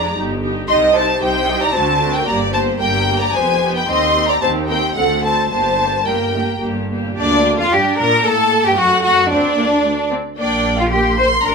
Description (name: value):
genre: quick classical-period movement for string orchestra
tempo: 112 BPM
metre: 3/4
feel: straight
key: G minor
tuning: A4 = 438 Hz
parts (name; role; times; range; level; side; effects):
- rich studio violin section; melody; 0.0-11.5 s; D4 to C6; -19 LUFS; left 1 dB; none
- rich chamber violin section; second line; 0.0-11.5 s; A4 to C6; -19 LUFS; left 1 dB; none
- rich chamber viola section; accompaniment; 0.0-11.5 s; A3 to A4; -23 LUFS; right 2 dB; none
- clear chamber cello section; bass; 0.0-11.5 s; D2 to C5; -20 LUFS; equal; none
- rich symphonic double bass section; bass; 0.0-11.5 s; F1 to Bb2; -24 LUFS; right 2 dB; none
room: light reverb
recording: minimal, uncompressed stereo recording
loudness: -14 LUFS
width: side -5 dB against mid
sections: 0.0-7.2 A section; 7.2-11.5 B section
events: none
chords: 0.2 Eb/G; 0.7 Cm6; 1.8 D7; 2.3 Gm; 3.3 G7/F; 3.9 Cm/Eb; 5.0 D7; 5.5 Gm; 7.2 Gm/D; 8.8 D; 10.4 Gm/Bb